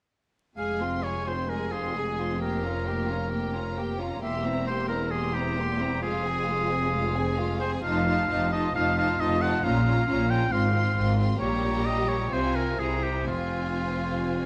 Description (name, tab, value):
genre	quick classical-period movement for symphony orchestra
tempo	133 BPM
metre	4/4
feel	rubato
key	F minor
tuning	A4 = 440 Hz
part	rich chamber violin section	melody	0.6-14.5 s	F5 to C6	-42 LUFS	equal	none
part	clear oboe	second line	0.6-14.5 s	F4 to G5	-32 LUFS	equal	none
part	rich chamber violin section	second line	0.6-14.5 s	E4 to Ab4	-37 LUFS	equal	none
part	rich chamber viola section	accompaniment	0.6-14.5 s	G3 to Eb4	-35 LUFS	equal	none
part	clear chamber cello section	bass	0.6-14.5 s	E2 to C3	-35 LUFS	equal	none
part	clear chamber double bass section	bass	0.6-14.5 s	E1 to C2	-33 LUFS	equal	none
room	moderate scoring stage reverb, RT60 1.9 s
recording	vinyl crackle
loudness	-27 LUFS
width	mono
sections	0.6-14.5 A section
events	none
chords	0.6 Fm; 2.4 Gm7b5/F; 4.2 C7/E; 6.0 Fm; 7.8 F7; 9.6 Bbm; 10.5 Fm/Ab; 11.4 Gdim/Bb; 12.3 Fm/C; 13.3 Fm